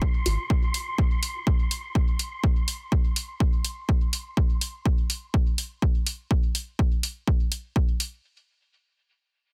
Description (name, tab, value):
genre	dub techno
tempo	124 BPM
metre	4/4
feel	swing 55% on 16ths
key	unclear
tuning	A4 = 441 Hz
part	electronic kick drum	drums	0.0-7.9 s	none	-25 LUFS	equal	none
part	wind-like tuned noise texture	texture	0.0-4.4 s	C6	-40 LUFS	equal	built-in reverb, sidechain pumping
part	electronic hi-hat	drums	0.3-8.1 s	none	-30 LUFS	equal	none
room	digital ambience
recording	dense, heavily limited modern master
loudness	-26 LUFS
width	mono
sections	0.0-8.2 A section; 8.2-9.5 B section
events	none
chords	none